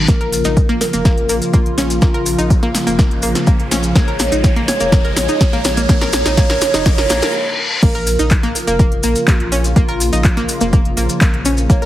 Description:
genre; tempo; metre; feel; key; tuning
progressive house; 124 BPM; 4/4; straight; Bb minor; A4 = 439 Hz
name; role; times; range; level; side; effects
warm analog pad; sustained chords; 0.0-11.9 s; Db3 to F4; -23 LUFS; equal; chorus, sidechain pumping
round analog bass; bass; 0.0-11.9 s; F1 to Bb1; -22 LUFS; equal; sidechain pumping
reverse cymbal and riser; sound effects; 0.0-7.8 s; none; -26 LUFS; left 2 dB; none
plucky unison lead; melody; 0.1-11.9 s; F4 to Db5; -21 LUFS; right 1 dB; vintage 12-bit sampler grit, sidechain pumping, dub echo
analog pluck; arpeggios; 0.1-11.9 s; Bb3 to Bb4; -21 LUFS; equal; chorus, sidechain pumping, dub echo
deep house drum kit; drums; 0.1-11.9 s; crash cymbal, handclaps, hi-hat, snare drum; -21 LUFS; equal; none
electronic kick drum; drums; 0.1-11.8 s; none; -13 LUFS; equal; none
maracas; percussion; 0.1-11.8 s; none; -25 LUFS; left 3 dB; none
room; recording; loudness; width
moderate digital room reverb, RT60 1.1 s; heavily compressed radio sound; -12 LUFS; side -13 dB against mid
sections
0.1-7.8 A section; 7.8-11.9 B section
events
build-up 0.1-7.8; drum fill 0.1-7.3; riser 0.1-7.3; reverse cymbal 6.9-7.8; stop 7.3-7.8; drop 7.8-11.9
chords
0.1 Bbm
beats
| 0.08 0.57 1.05 1.54 | 2.02 2.50 2.99 3.47 | 3.96 4.44 4.92 5.41 | 5.89 6.37 6.86 7.34 | 7.83 8.31 8.79 9.28 | 9.76 10.24 10.73 11.21 | 11.70

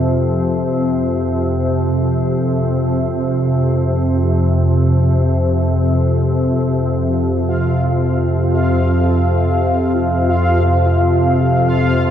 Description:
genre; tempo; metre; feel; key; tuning
dark ambient drone; free time; none; none; unclear; A4 = 440 Hz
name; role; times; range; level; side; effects
organ-like drone; drone; 0.0-12.1 s; F2 to C3; -14 LUFS; equal; ensemble chorus, built-in reverb
bubbling stepped-filter texture; texture; 7.2-12.1 s; F4 to F5; -19 LUFS; equal; chorus, built-in reverb
room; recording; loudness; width
wet huge ambient reverb, RT60 7.5 s; dark, warm production; -14 LUFS; side -9 dB against mid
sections
0.0-6.8 A section; 6.8-12.1 B section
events
none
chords
0.0 F5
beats
free time

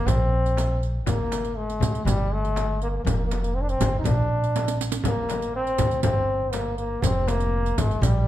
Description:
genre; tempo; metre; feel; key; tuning
Arabic maqam ensemble; 121 BPM; 4/4; straight; unclear; A4 = 442 Hz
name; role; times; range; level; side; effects
clear trombone; melody; 0.0-8.3 s; G3 to Eb4; -26 LUFS; left 1 dB; none
upright bass; bass; 0.0-8.3 s; F1 to D2; -25 LUFS; equal; none
darbuka; percussion; 0.1-8.2 s; none; -29 LUFS; right 2 dB; none
frame drum; percussion; 0.1-8.1 s; none; -30 LUFS; left 5 dB; none
riq; percussion; 0.1-8.1 s; none; -34 LUFS; right 8 dB; none
room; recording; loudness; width
moderate recital hall reverb, RT60 1.3 s; dark, warm production; -22 LUFS; side -13 dB against mid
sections
0.0-8.3 A section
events
drum fill 4.5-5.0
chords
none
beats
0.07 0.57 | 1.07 1.57 2.06 2.56 | 3.06 3.55 4.05 4.55 | 5.05 5.54 6.04 6.54 | 7.03 7.53 8.03

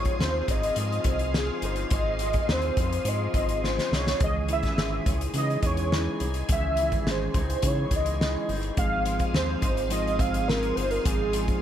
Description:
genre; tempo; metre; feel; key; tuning
indie pop, bedroom pop; 105 BPM; 4/4; straight; Ab major; A4 = 440 Hz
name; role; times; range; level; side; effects
warm velvety synth lead; melody; 0.0-11.6 s; Ab4 to F5; -29 LUFS; right 2 dB; ensemble chorus, slapback echo
electric guitar through a small old amp; accompaniment; 0.0-11.6 s; Ab2 to Eb4; -33 LUFS; left 5 dB; analog chorus, warbly pitch drift
soft string machine; sustained chords; 0.0-11.6 s; Ab4 to Eb6; -38 LUFS; equal; ensemble chorus
round analog bass; bass; 0.0-11.5 s; G1 to Db3; -30 LUFS; equal; none
loose indie drum kit; drums; 0.0-11.6 s; hi-hat, kick drum, snare drum; -28 LUFS; equal; none
mellow tonewheel organ; accompaniment; 4.2-11.6 s; Eb3 to Ab4; -33 LUFS; right 4 dB; slow rotary speaker, cassette tape
room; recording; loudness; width
small room ambience; none; -23 LUFS; side -10 dB against mid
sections
0.0-11.6 A section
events
drum fill 3.6-4.2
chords
0.0 Ab6; 4.2 Dbmadd9; 8.8 Ab6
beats
0.20 0.78 1.35 | 1.92 2.49 3.06 3.63 | 4.21 4.78 5.35 5.92 | 6.49 7.06 7.63 8.20 | 8.77 9.34 9.91 10.48 | 11.05

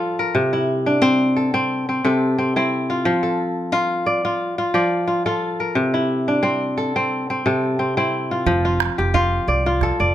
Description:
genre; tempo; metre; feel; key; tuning
west african traditional, West African string and xylophone music; 89 BPM; 4/4; swing 53% on 16ths; F major; A4 = 440 Hz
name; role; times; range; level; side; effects
kora; arpeggios; 0.0-10.1 s; C3 to D5; -18 LUFS; left 1 dB; none
upright bass; bass; 8.5-10.1 s; F1 to C2; -22 LUFS; right 1 dB; none
calabash; percussion; 8.5-10.0 s; none; -25 LUFS; right 10 dB; none
room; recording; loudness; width
light reverb; close, detailed microphones; -17 LUFS; side -12 dB against mid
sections
0.0-8.5 A section; 8.5-10.1 A section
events
none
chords
0.3 C; 3.0 F; 5.8 C; 8.5 F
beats
| 0.34 1.02 1.70 2.37 | 3.05 3.73 4.40 5.08 | 5.76 6.43 7.11 7.78 | 8.46 9.14 9.81

